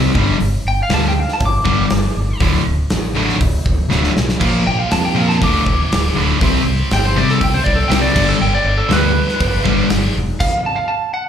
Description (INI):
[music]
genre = hard rock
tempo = 120 BPM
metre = 4/4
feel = straight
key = unclear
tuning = A4 = 440 Hz
[part]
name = sludgy distorted guitar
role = riff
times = 0.0-9.9 s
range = D2 to C4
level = -20 LUFS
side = left 8 dB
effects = overdrive, slapback echo
[part]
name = tight distorted guitar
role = riff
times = 0.0-9.9 s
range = D2 to C4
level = -22 LUFS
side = right 11 dB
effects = distortion, slapback echo
[part]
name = modern bright fingered electric bass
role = bass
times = 0.0-10.3 s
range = D1 to F2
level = -18 LUFS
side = equal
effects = none
[part]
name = big rock drum kit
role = drums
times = 0.2-10.5 s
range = crash cymbal, hi-hat, kick drum, snare drum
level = -20 LUFS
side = equal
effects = none
[part]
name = lightly driven lead guitar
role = melody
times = 0.7-11.3 s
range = A4 to D6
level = -20 LUFS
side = equal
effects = slapback echo, tape echo
[part]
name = heavy high-gain guitar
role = riff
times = 4.4-10.1 s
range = D2 to C4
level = -22 LUFS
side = left 1 dB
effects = distortion
[sound]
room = small room ambience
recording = live gig heard through the venue's PA, club reverb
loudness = -13 LUFS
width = side -8 dB against mid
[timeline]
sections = 0.0-11.3 A section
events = lead electric guitar solo 0.0-11.3; drum fill 3.9-4.4; stop 10.4-11.3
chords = 0.2 G5; 2.4 D5; 4.4 Bb5; 5.4 D5; 6.4 C5; 8.2 G; 10.4 N.C.